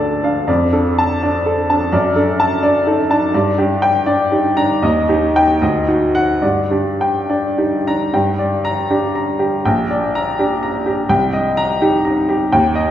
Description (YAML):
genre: classical, romantic character piece for solo piano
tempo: 67-87 BPM (dotted quarters)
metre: 6/8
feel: rubato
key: G minor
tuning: A4 = 440 Hz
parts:
  - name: clear upright piano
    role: solo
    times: 0.0-12.9 s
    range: Bb1 to Bb5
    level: -14 LUFS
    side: equal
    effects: none
room: wet recital hall reverb, RT60 1.8 s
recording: heard from further back in the room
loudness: -14 LUFS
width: side -11 dB against mid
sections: 0.0-8.1 A section; 8.1-12.9 B section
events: none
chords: 0.5 Dm/F; 1.9 D/F#; 3.3 Gm; 4.8 Eb; 5.6 D; 6.4 Gm; 9.6 Gm/Bb; 11.1 Cm7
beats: | 0.48 1.23 | 1.93 2.63 | 3.33 4.06 | 4.82 5.61 | 6.41 7.28 | 8.13 8.90 | 9.65 10.38 | 11.09 11.81 | 12.53